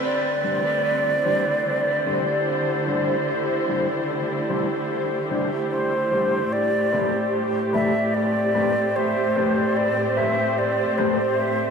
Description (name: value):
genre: ambient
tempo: 74 BPM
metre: 4/4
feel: swing 53% on 16ths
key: unclear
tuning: A4 = 441 Hz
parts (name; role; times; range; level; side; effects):
- silver concert flute; melody; 0.0-11.7 s; C5 to E5; -23 LUFS; equal; dub echo
- muted studio string section; sustained chords; 0.0-11.7 s; A2 to C5; -24 LUFS; right 1 dB; vintage 12-bit sampler grit
- electric guitar at the edge of break-up; stabs; 0.4-11.2 s; G3 to C5; -27 LUFS; left 4 dB; phaser, low-pass filter, dub echo
room: moderate huge ambient reverb, RT60 8.4 s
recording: none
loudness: -20 LUFS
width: side -6 dB against mid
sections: 0.0-11.7 A section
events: none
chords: 0.0 D7sus4; 6.5 Am9